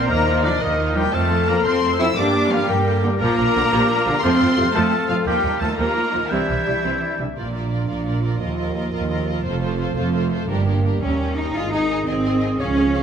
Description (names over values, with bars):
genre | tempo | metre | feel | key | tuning
cinematic | 115 BPM (dotted quarters) | 6/8 | straight | F major | A4 = 440 Hz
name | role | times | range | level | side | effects
rich symphonic violin section | melody | 0.0-13.0 s | Bb4 to E6 | -26 LUFS | left 4 dB | none
hollow concert flute | second line | 0.0-7.2, 11.5-13.0 s | Eb5 to G6 | -28 LUFS | equal | none
rich studio violin section | second line | 0.0-13.0 s | Bb3 to Eb5 | -32 LUFS | left 3 dB | none
warm clarinet | second line | 0.0-7.4, 11.6-13.0 s | Ab4 to E5 | -30 LUFS | left 2 dB | none
warm oboe | second line | 0.0-7.2, 11.6-13.0 s | D4 to E5 | -27 LUFS | right 1 dB | none
rich studio viola section | accompaniment | 0.0-13.0 s | Eb3 to Ab4 | -28 LUFS | right 1 dB | none
mellow French horn section | sustained chords | 0.0-7.1, 11.0-13.0 s | C4 to C5 | -26 LUFS | left 4 dB | none
rich symphonic cello section | bass | 0.0-13.0 s | Eb2 to F4 | -24 LUFS | right 2 dB | none
warm symphonic double bass section | bass | 0.0-13.0 s | F1 to G2 | -24 LUFS | right 2 dB | none
warm trombone section | sustained chords | 0.4-13.0 s | D3 to Eb4 | -28 LUFS | right 3 dB | none
room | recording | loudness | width
wet recital hall reverb, RT60 1.6 s | none | -17 LUFS | side -7 dB against mid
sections
0.0-7.4 A section; 7.4-11.6 B section; 11.6-13.0 C section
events
none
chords
0.1 Ebsus2; 1.1 F; 2.2 Gm; 3.2 Bb; 4.2 F; 5.3 Ebsus2; 6.3 Cadd9; 7.4 Bb; 8.4 Ebsus2; 9.5 F; 10.5 Gm; 11.0 Eb7; 11.6 Ab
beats
| 0.09 0.61 | 1.13 1.66 | 2.17 2.69 | 3.21 3.72 | 4.24 4.76 | 5.28 5.79 | 6.32 6.85 | 7.38 7.90 | 8.42 8.94 | 9.46 9.97 | 10.49 11.02 | 11.56 12.08 | 12.61